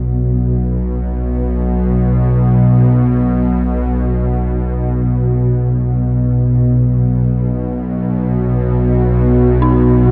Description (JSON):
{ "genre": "dark ambient drone", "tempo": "free time", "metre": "none", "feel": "none", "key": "unclear", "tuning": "A4 = 439 Hz", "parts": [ { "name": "bowed-like drone", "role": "drone", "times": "0.0-10.1 s", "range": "B1 to B2", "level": "-15 LUFS", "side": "equal", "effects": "built-in reverb" }, { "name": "dark analog pad", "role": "sustained chords", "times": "7.4-10.1 s", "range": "B3 to F#5", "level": "-20 LUFS", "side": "equal", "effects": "chorus" }, { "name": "dark detuned synth bell", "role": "arpeggios", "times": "9.6-10.1 s", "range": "D#4", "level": "-22 LUFS", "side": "equal", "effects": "chorus" } ], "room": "moderate huge ambient reverb, RT60 7.7 s", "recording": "none", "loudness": "-14 LUFS", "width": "mono", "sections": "0.0-10.1 A section", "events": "filter sweep on synth drone 0.0-10.1", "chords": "0.0 B5" }